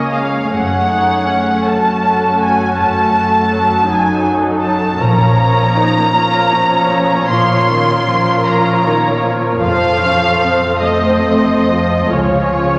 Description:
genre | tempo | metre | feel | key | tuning
cinematic, emotional film score for orchestra | 44-55 BPM (dotted quarters) | 6/8 | rubato | unclear | A4 = 440 Hz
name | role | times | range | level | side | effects
muted studio violin section | melody | 0.0-12.8 s | Db5 to C6 | -18 LUFS | equal | none
muted symphonic violin section | second line | 0.0-12.8 s | Gb4 to Db5 | -22 LUFS | equal | none
muted studio viola section | accompaniment | 0.0-12.8 s | Eb3 to F4 | -19 LUFS | equal | none
concert harp | arpeggios | 0.0-12.8 s | Gb2 to F5 | -25 LUFS | equal | none
muted studio cello section | bass | 0.0-12.8 s | Db2 to Bb2 | -26 LUFS | equal | none
muted studio double bass section | bass | 0.5-1.2, 5.0-5.7, 9.6-12.8 s | F1 to Db2 | -24 LUFS | equal | none
room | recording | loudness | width
wet scoring stage reverb, RT60 2.1 s | none | -14 LUFS | mono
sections
0.0-12.8 A section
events
none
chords
0.0 Db; 0.5 Gbmadd9; 5.0 Bbmadd9; 9.6 F; 12.1 Db

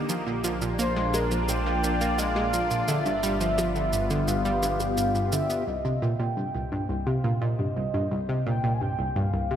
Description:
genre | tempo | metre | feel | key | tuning
ambient, sequencer-driven space music | 86 BPM | 4/4 | straight | unclear | A4 = 440 Hz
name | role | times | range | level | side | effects
lush unison pad | sustained chords | 0.0-9.6 s | Bb3 to D5 | -32 LUFS | equal | chorus, phaser
fat analog bass | bass | 0.0-9.6 s | G1 to C2 | -33 LUFS | equal | none
analog pluck | riff | 0.1-9.6 s | C2 to B3 | -27 LUFS | right 1 dB | chorus, tape echo
shaker and bongos | percussion | 0.1-5.6 s | none | -36 LUFS | right 3 dB | tape echo
mellow horn-like synth lead | melody | 0.8-9.6 s | Bb4 to Ab5 | -30 LUFS | equal | analog chorus, tape echo
room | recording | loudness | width
wet concert hall reverb, RT60 2.5 s | none | -24 LUFS | side -9 dB against mid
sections
0.0-5.7 A section; 5.7-9.6 B section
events
none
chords
0.1 Bb; 2.9 G7; 5.7 Cm7

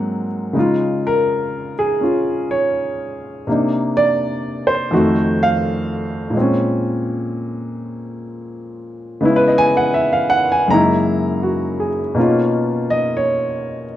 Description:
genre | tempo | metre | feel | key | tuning
solo jazz | 82 BPM | 4/4 | swing 66% on 8ths, rubato | Db major | A4 = 440 Hz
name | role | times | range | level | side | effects
warm baby grand piano | solo | 0.0-14.0 s | F2 to Bb5 | -16 LUFS | equal | slapback echo
room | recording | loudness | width
light reverb | dry, close 1970s-style studio recording | -15 LUFS | side -12 dB against mid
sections
0.6-14.0 A section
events
grand piano solo 0.6-14.0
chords
0.0 Ab9; 0.6 Dbadd9; 3.5 Cm9; 4.9 F7b9; 6.4 Bbm9; 9.2 Dbm7; 10.7 Gb13; 12.2 Cbmaj9#11

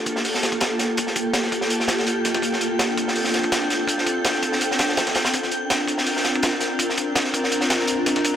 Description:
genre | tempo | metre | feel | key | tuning
drum and bass, jungle | 165 BPM | 4/4 | straight | unclear | A4 = 439 Hz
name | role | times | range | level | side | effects
granular cloud pad | sustained chords | 0.0-8.4 s | Bb3 to Bb4 | -23 LUFS | equal | built-in reverb
wind-like tuned noise texture | texture | 0.0-8.4 s | G5 to G6 | -30 LUFS | right 1 dB | built-in reverb
crunchy breakbeat drum kit | drums | 0.1-8.4 s | hi-hat, kick drum, snare drum | -23 LUFS | equal | high-pass filter on kick, high-pass filter on hats, high-pass filter on snare, high-pass filter on room
dusty soul sampler-style drum kit | drums | 0.1-8.4 s | hi-hat, snare drum | -29 LUFS | left 1 dB | none
room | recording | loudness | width
moderate lush hall reverb, RT60 2.1 s | dry, gritty hardware recording, transformer saturation | -19 LUFS | side -9 dB against mid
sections
0.0-8.4 A section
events
build-up 0.0-8.4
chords
0.0 Gm9; 2.4 Dm7; 5.3 C9sus4

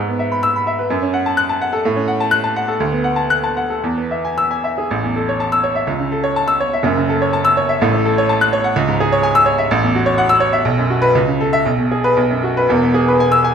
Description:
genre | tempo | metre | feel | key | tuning
classical, virtuoso piano study | 110-130 BPM | 2/4 | rubato | A major, E major from 8.8 s | A4 = 440 Hz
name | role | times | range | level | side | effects
bright baby grand piano | solo | 0.0-13.5 s | E1 to F#6 | -14 LUFS | equal | none
room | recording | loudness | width
moderate recital hall reverb, RT60 1.7 s | minimal, uncompressed stereo recording | -14 LUFS | side -7 dB against mid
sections
0.0-4.9 A section; 4.9-12.7 B section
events
none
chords
0.0 E/G#; 0.9 F#m; 1.8 F#m/A; 2.8 Bm7/D; 3.8 E; 4.9 A; 5.9 A/C#; 6.8 F#m7; 7.8 F#m/A; 8.8 C#m; 9.7 F#m7/A; 10.6 B5; 11.1 A/C#; 11.6 G#m/B; 12.2 B5; 12.7 E

